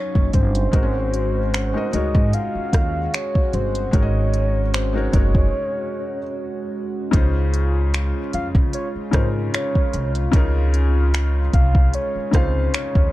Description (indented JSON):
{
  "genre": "contemporary R&B",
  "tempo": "75 BPM",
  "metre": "4/4",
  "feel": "swing 54% on 16ths",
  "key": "unclear",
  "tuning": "A4 = 440 Hz",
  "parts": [
    { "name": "soft octave-layered synth lead", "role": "melody", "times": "0.0-13.1 s", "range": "C5 to F5", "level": "-26 LUFS", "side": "equal", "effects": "chorus, tape echo" },
    { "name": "felt-muted upright piano", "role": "accompaniment", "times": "0.0-13.1 s", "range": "Db3 to F5", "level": "-28 LUFS", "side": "left 4 dB", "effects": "none" },
    { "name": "chorused pulse-width pad", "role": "sustained chords", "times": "0.0-13.1 s", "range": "Gb3 to Gb4", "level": "-29 LUFS", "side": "right 1 dB", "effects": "none" },
    { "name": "upright bass", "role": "bass", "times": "0.2-13.1 s", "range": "Gb1 to Db3", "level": "-20 LUFS", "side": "equal", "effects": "none" },
    { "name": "smooth R&B drum kit", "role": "drums", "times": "0.2-13.1 s", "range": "finger snaps, hi-hat, kick drum, rim click", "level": "-18 LUFS", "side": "equal", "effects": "overdrive, vintage 12-bit sampler grit" }
  ],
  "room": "digital ambience",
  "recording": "dark, warm production",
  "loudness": "-18 LUFS",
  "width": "side -16 dB against mid",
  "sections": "0.0-7.1 A section; 7.1-13.1 B section",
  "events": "break 5.5-7.1",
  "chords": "0.0 Ebm7/Gb; 0.7 Ab7sus4; 7.1 Dbmaj7"
}